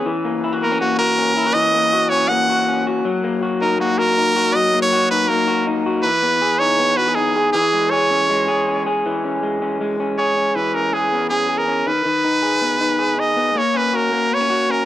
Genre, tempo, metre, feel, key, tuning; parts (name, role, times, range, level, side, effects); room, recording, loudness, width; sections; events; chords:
indie pop; 160 BPM; 4/4; straight; C# dorian; A4 = 440 Hz
electric guitar through a small old amp; arpeggios; 0.0-14.9 s; D#3 to G#4; -20 LUFS; left 2 dB
brilliant trumpet; melody; 0.6-14.9 s; F#4 to F#5; -18 LUFS; right 1 dB; analog delay
light reverb; dark, warm production; -16 LUFS; side -13 dB against mid
0.0-9.0 A section; 9.0-10.6 B section; 10.6-14.9 C section
0.1 F#7; 3.1 F#6; 6.0 Emaj7; 7.5 C#m; 10.6 C#m7; 11.9 G#m; 13.6 F#